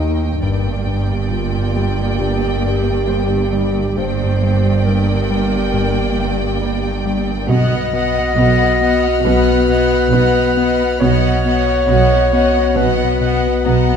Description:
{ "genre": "cinematic, suspense film score", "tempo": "68 BPM", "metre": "4/4", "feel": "straight", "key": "unclear", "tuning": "A4 = 441 Hz", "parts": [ { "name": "rich chamber violin section", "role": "melody", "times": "0.0-14.0 s", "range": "F#5 to G5", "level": "-24 LUFS", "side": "left 1 dB", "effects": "none" }, { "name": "warm chamber violin section", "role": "second line", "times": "0.0-14.0 s", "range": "D5 to Eb5", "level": "-27 LUFS", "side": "left 2 dB", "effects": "none" }, { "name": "rich chamber viola section", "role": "accompaniment", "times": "0.0-14.0 s", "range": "Bb3 to B3", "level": "-26 LUFS", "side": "right 2 dB", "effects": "none" }, { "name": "mellow French horn section", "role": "sustained chords", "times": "0.0-14.0 s", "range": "Bb3 to G4", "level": "-23 LUFS", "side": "left 5 dB", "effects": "none" }, { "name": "fat analog bass", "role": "riff", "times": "0.0-13.9 s", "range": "G2 to Eb4", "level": "-23 LUFS", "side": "left 4 dB", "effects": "none" }, { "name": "rich studio cello section", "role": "bass", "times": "0.0-14.0 s", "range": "Eb2 to B2", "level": "-21 LUFS", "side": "right 3 dB", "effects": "none" }, { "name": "warm chamber double bass section", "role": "bass", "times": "0.0-14.0 s", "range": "G1 to Eb2", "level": "-22 LUFS", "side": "right 5 dB", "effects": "none" }, { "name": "pure sine sub bass", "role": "drone", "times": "0.0-14.0 s", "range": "G1 to Eb2", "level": "-24 LUFS", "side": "equal", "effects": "none" }, { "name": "Celtic harp", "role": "texture", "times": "0.0-14.0 s", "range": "B3 to Bb5", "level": "-27 LUFS", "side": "left 5 dB", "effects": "none" }, { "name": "dark clarinet", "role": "second line", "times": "1.3-14.0 s", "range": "F4 to D#5", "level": "-20 LUFS", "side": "equal", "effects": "none" }, { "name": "rich studio violin section", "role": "texture", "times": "7.5-14.0 s", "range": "B5 to F6", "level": "-30 LUFS", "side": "left 2 dB", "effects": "none" } ], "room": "wet scoring stage reverb, RT60 1.6 s", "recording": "none", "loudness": "-13 LUFS", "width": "side -7 dB against mid", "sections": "0.0-14.0 A section", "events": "none", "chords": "0.4 Gm; 7.5 B" }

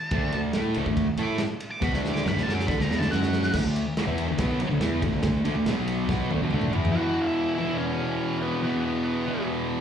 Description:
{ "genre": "garage rock duo or trio", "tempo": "141 BPM", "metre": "4/4", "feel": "straight", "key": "unclear", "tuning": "A4 = 440 Hz", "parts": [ { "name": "octave-fuzz lead guitar", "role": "melody", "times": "0.0-3.5, 6.9-9.4 s", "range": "B3 to D6", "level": "-31 LUFS", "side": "equal", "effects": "distortion, slapback echo" }, { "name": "thick fuzz guitar", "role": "riff", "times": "0.1-9.8 s", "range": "E2 to A4", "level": "-26 LUFS", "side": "equal", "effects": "distortion" }, { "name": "fuzz fingered electric bass", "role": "bass", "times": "0.1-6.9 s", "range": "B1 to D3", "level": "-30 LUFS", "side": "equal", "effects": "overdrive" }, { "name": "crunchy breakbeat drum kit", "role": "drums", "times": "0.1-6.9 s", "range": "crash cymbal, kick drum, ride cymbal, snare drum, toms", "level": "-29 LUFS", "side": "equal", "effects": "none" } ], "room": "light reverb", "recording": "live gig heard through the venue's PA, club reverb", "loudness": "-23 LUFS", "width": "side -8 dB against mid", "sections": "0.0-3.5 A section; 3.5-6.9 B section; 6.9-9.8 C section", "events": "lead electric guitar solo 0.0-3.5; drum fill 1.8-3.5, 6.1-6.9", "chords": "0.1 D5; 3.1 F#5; 3.5 D5; 5.7 B5; 6.1 D5; 6.9 E5" }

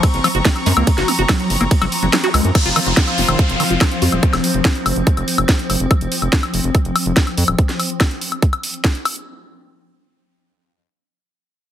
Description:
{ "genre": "psychedelic trance", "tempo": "143 BPM", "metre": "4/4", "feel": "straight", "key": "unclear", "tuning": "A4 = 440 Hz", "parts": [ { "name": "swarming drone", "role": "sustained chords", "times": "0.0-7.6 s", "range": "F3 to C4", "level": "-23 LUFS", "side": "left 1 dB", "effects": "built-in reverb, sidechain pumping" }, { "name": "liquid acid bass", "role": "riff", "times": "0.0-4.2 s", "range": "Eb3 to Gb4", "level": "-21 LUFS", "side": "right 1 dB", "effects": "phaser, auto-pan, sidechain pumping, dub echo" }, { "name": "drum and bass drum kit", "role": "drums", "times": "0.0-9.2 s", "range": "crash cymbal, hi-hat, ride cymbal, snare drum, woodblock", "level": "-19 LUFS", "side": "left 1 dB", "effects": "overdrive" }, { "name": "electronic kick drum", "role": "drums", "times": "0.0-8.9 s", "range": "none", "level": "-15 LUFS", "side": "equal", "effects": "overdrive" }, { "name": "rich studio string section", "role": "texture", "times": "0.0-4.2 s", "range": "F4 to Db6", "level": "-24 LUFS", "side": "left 3 dB", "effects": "sidechain pumping" }, { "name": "round analog bass", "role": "bass", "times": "0.1-7.5 s", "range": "Eb1 to Gb2", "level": "-20 LUFS", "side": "equal", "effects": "none" }, { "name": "zap and downlifter", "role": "sound effects", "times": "2.2-5.9 s", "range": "none", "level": "-25 LUFS", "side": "right 2 dB", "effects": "none" } ], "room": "light reverb, digital ambience", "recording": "heavily compressed radio sound, multiband compression", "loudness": "-14 LUFS", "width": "side -10 dB against mid", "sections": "0.0-2.5 A section; 2.5-9.3 B section", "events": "drop 0.0-2.5; kick drops out 2.1-2.5; filter sweep on acid bass 2.5-4.2", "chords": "0.0 Gb5; 2.5 F5" }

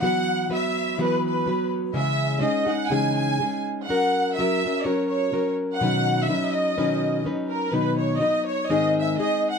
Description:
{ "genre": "mexican folk", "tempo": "125 BPM", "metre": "2/4", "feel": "straight", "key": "B major", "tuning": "A4 = 440 Hz", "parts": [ { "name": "rich studio violin section", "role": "melody", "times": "0.0-9.6 s", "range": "A#4 to G#5", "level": "-25 LUFS", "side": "equal", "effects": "none" }, { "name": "nylon-string guitar", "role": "accompaniment", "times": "0.0-9.6 s", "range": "G#2 to B4", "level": "-23 LUFS", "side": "left 1 dB", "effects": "none" } ], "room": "wet small room reverb, RT60 0.6 s", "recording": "dark, warm production", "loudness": "-21 LUFS", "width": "side -6 dB against mid", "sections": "0.0-7.7 A section; 7.7-9.6 B section", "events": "none", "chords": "0.0 Esus2; 1.9 C#madd9; 3.9 F#; 5.8 Badd9; 7.7 B; 8.7 G#" }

